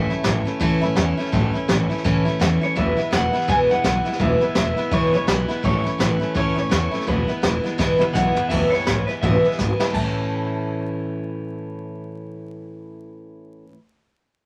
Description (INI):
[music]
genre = rockabilly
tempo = 167 BPM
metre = 4/4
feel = swing 60% on 8ths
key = A major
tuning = A4 = 440 Hz
[part]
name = electric guitar through a small old amp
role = melody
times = 0.0-13.6 s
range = B4 to A5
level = -28 LUFS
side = equal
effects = none
[part]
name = picked steel-string acoustic guitar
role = accompaniment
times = 0.0-13.8 s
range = E2 to E4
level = -24 LUFS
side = equal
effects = none
[part]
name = upright bass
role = bass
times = 0.0-13.6 s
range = E1 to E2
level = -28 LUFS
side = equal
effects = none
[part]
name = jazz brush drum kit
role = drums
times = 0.1-10.0 s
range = crash cymbal, hi-hat, kick drum, snare drum, toms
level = -28 LUFS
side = equal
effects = none
[sound]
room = light reverb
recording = vinyl crackle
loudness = -21 LUFS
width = mono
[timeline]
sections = 0.0-8.5 A section; 8.5-9.9 B section; 9.9-12.8 C section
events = drum fill 7.8-8.5, 9.6-9.9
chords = 0.0 A; 2.8 E; 5.6 A; 7.1 E; 9.9 A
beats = 0.25 0.61 0.97 | 1.33 1.69 2.05 2.41 | 2.77 3.12 3.48 3.84 | 4.20 4.56 4.92 5.28 | 5.64 6.00 6.36 6.71 | 7.07 7.43 7.79 8.15 | 8.51 8.87 9.23 9.59 | 9.95 10.30 10.66 11.02 | 11.38 11.74 12.10 12.46